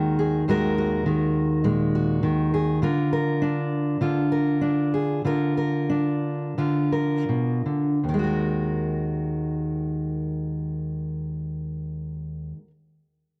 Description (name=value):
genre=folk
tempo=78-102 BPM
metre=4/4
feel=straight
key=Eb harmonic minor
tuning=A4 = 439 Hz
part: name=fingerpicked steel-string acoustic guitar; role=accompaniment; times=0.0-12.7 s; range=Eb2 to Bb4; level=-25 LUFS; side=equal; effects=none
room=moderate studio reverb, RT60 0.5 s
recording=dark, warm production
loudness=-25 LUFS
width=mono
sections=0.0-8.0 A section; 8.0-11.1 B section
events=slowing down 2.8-8.0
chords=0.0 Ebm; 2.8 Bb/D; 8.0 Ebm